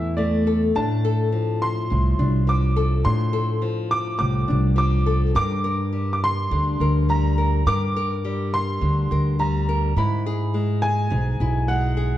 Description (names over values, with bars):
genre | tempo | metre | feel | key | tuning
acoustic folk duo or small band | 104 BPM | 4/4 | straight | F major | A4 = 440 Hz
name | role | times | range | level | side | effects
bright upright piano | melody | 0.0-12.2 s | D5 to D6 | -26 LUFS | right 1 dB | none
nylon-string guitar | accompaniment | 0.0-12.2 s | G2 to Bb4 | -26 LUFS | left 3 dB | none
upright bass | bass | 0.0-12.2 s | B1 to A2 | -21 LUFS | right 1 dB | none
room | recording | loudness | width
moderate recital hall reverb, RT60 1.5 s | dark, warm production | -19 LUFS | side -13 dB against mid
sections
0.0-12.2 A section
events
none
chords
0.0 A5; 0.8 F6; 5.4 Gm; 10.0 E